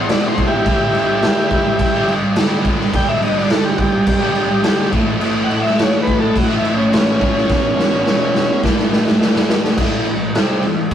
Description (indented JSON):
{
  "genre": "garage rock duo or trio",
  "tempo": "105 BPM",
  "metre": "4/4",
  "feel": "straight",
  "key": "A mixolydian",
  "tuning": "A4 = 442 Hz",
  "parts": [
    { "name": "overdriven combo organ", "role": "melody", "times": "0.0-8.6 s", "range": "C4 to G5", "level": "-18 LUFS", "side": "equal", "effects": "none" },
    { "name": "fuzz guitar", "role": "riff", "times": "0.0-10.9 s", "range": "E2 to C4", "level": "-18 LUFS", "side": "equal", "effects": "distortion" },
    { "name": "raw garage drum kit", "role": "drums", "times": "0.1-10.9 s", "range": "crash cymbal, kick drum, snare drum", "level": "-17 LUFS", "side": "equal", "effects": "none" }
  ],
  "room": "moderate booth ambience, RT60 0.2 s",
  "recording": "rough rehearsal-room recording, warm saturation",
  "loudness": "-13 LUFS",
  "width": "side -9 dB against mid",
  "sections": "0.0-9.8 A section; 9.8-10.9 B section",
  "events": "transistor combo organ solo 0.0-9.8; drum fill 7.5-9.8",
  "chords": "0.0 E5; 0.7 G5; 4.9 A; 7.5 E5; 8.6 A5"
}